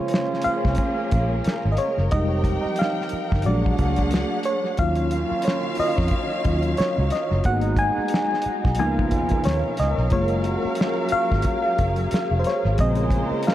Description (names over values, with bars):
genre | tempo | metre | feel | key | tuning
R&B, neo-soul | 90 BPM | 4/4 | swing 57% on 16ths | Bb minor | A4 = 435 Hz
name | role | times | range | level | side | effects
FM electric piano with auto-pan | accompaniment | 0.0-13.5 s | Db3 to Ab5 | -24 LUFS | left 1 dB | tape echo
dark studio string section | sustained chords | 0.0-13.5 s | Cb3 to G5 | -29 LUFS | equal | none
clear trombone section | stabs | 0.0-13.5 s | F3 to Ab4 | -29 LUFS | right 4 dB | tape echo
cloth-damped thuddy drum kit | drums | 0.1-13.5 s | hi-hat, kick drum, snare drum | -25 LUFS | equal | tape echo
vintage muted fingered electric bass | bass | 0.5-13.3 s | F1 to F2 | -24 LUFS | equal | none
room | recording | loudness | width
light reverb | echo-heavy mix | -20 LUFS | side -13 dB against mid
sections
0.0-13.5 A section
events
FM electric piano solo 0.0-13.5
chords
0.0 Bbm9; 2.1 Fm9; 3.4 Bb7alt; 4.8 Ebm9; 7.4 Abm7; 8.8 Db13; 10.1 Gbmaj9; 12.8 Bbm9